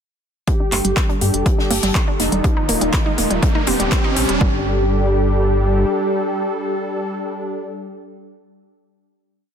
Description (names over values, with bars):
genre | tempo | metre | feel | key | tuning
melodic techno | 122 BPM | 4/4 | straight | G minor | A4 = 437 Hz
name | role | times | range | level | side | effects
wide unison lead | melody | 0.5-7.6 s | Eb4 to G4 | -23 LUFS | equal | digital delay
sweeping resonant pad | sustained chords | 0.5-7.6 s | C3 to A4 | -25 LUFS | left 1 dB | chorus, sidechain pumping
wide unison pluck | arpeggios | 0.5-4.6 s | G3 to G4 | -24 LUFS | right 2 dB | sidechain pumping, digital delay
electronic kick drum | drums | 0.5-4.5 s | none | -18 LUFS | equal | none
natural country drum kit | drums | 0.5-4.3 s | hi-hat, snare drum | -30 LUFS | left 3 dB | sidechain pumping on hats, high-pass filter on hats, high-pass filter on snare, high-pass filter on room
techno drum kit | drums | 0.5-4.4 s | handclaps, hi-hat | -24 LUFS | left 1 dB | high-pass filter on hats, high-pass filter on snare
riser | sound effects | 2.2-4.4 s | none | -26 LUFS | right 3 dB | none
round analog bass | bass | 0.7-5.8 s | Eb1 to G2 | -21 LUFS | equal | tube saturation, sidechain pumping
room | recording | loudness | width
light reverb | dense, heavily limited modern master | -16 LUFS | side -8 dB against mid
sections
0.5-4.4 build; 4.4-8.3 final chord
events
build-up 0.5-4.4; filter sweep on synth arpeggio sound 0.5-4.4; riser 2.2-4.4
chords
0.5 Gm; 2.4 Eb; 3.4 Cm/Eb; 4.4 G5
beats
| 0.48 0.97 1.46 1.95 | 2.44 2.94 3.43 3.92 | 4.41 4.90 5.39 5.88 | 6.38 6.87 7.36